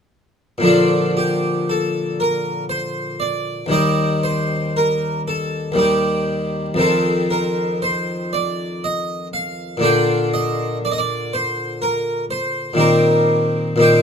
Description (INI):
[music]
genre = classical, baroque-style suite movement for harpsichord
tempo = 59 BPM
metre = 3/4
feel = rubato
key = Bb major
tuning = A4 = 440 Hz
[part]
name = harpsichord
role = solo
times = 0.6-14.0 s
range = Eb2 to G5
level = -17 LUFS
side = equal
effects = none
[sound]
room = light reverb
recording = close, detailed microphones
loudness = -17 LUFS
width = side -7 dB against mid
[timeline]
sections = 0.6-14.0 A section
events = none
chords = 0.6 Bb; 3.7 Eb; 6.8 F5; 9.8 Bb; 12.8 Cm7/Bb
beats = | 0.65 1.69 2.71 | 3.73 4.76 5.78 | 6.81 7.82 8.84 | 9.84 10.84 11.82 | 12.79 13.82